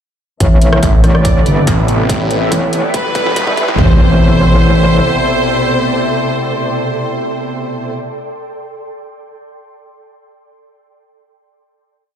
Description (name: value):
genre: heavy wobble dubstep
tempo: 142 BPM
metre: 4/4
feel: half-time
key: A minor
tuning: A4 = 440 Hz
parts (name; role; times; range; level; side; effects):
- bright symphonic violin section; melody; 0.4-7.9 s; B4 to E5; -19 LUFS; equal; low-pass filter, tape echo
- lush unison pad; sustained chords; 0.4-7.9 s; B2 to E4; -18 LUFS; equal; chorus, sidechain pumping
- metallic wobble bass; bass; 0.4-5.0 s; G1 to C2; -11 LUFS; equal; chorus, overdrive
- dubstep drum kit; drums; 0.4-3.7 s; hi-hat, rim click; -22 LUFS; equal; none
- electronic kick drum; drums; 0.4-3.9 s; none; -15 LUFS; equal; overdrive
- riser and impact; sound effects; 2.3-8.4 s; none; -21 LUFS; equal; none
- ethereal airy pad; texture; 1.1-7.9 s; A4 to C6; -22 LUFS; equal; ensemble chorus, built-in reverb, sidechain pumping
- snarling distorted saw bass; bass; 0.8-3.8 s; E1 to A1; -14 LUFS; equal; distortion, overdrive
room: light reverb, digital ambience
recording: played on a big sound system in a bare room, large studio reverb, high-pass filter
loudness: -10 LUFS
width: side -9 dB against mid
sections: 0.4-3.8 build; 3.8-7.2 final chord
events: build-up 0.4-3.8; filter sweep on violin section 0.4-3.8; filter sweep 0.4-3.8; drum fill 2.1-3.8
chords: 0.4 Amadd9